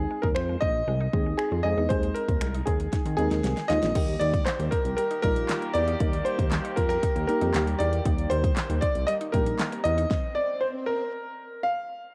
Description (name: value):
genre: dance-pop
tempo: 117 BPM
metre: 4/4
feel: straight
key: Eb major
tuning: A4 = 440 Hz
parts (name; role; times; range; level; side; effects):
- clear concert grand piano; melody; 0.0-12.1 s; Ab4 to F5; -30 LUFS; equal; none
- deep mellow chord stab; accompaniment; 0.0-9.9 s; G3 to Bb4; -35 LUFS; equal; chorus, sidechain pumping, cassette tape
- fat analog bass; bass; 0.0-10.1 s; Bb1 to Eb3; -31 LUFS; equal; sidechain pumping
- mallet-like synth pluck; arpeggios; 0.1-10.1 s; G3 to Eb4; -44 LUFS; equal; none
- pop drum kit; drums; 0.2-10.2 s; crash cymbal, finger snaps, handclaps, hi-hat, kick drum, snare drum; -30 LUFS; equal; none
- muted French horn section; sustained chords; 4.0-10.1 s; Eb3 to G4; -40 LUFS; equal; sidechain pumping, cassette tape
- swell; sound effects; 9.8-11.1 s; none; -42 LUFS; equal; none
room: light reverb, digital ambience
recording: home recording on cassette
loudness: -26 LUFS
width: mono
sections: 0.0-4.0 A section; 4.0-12.1 B section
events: drum fill 2.9-4.0; swell 9.8-12.1; stop 10.1-12.1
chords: 0.0 Ab; 4.0 Eb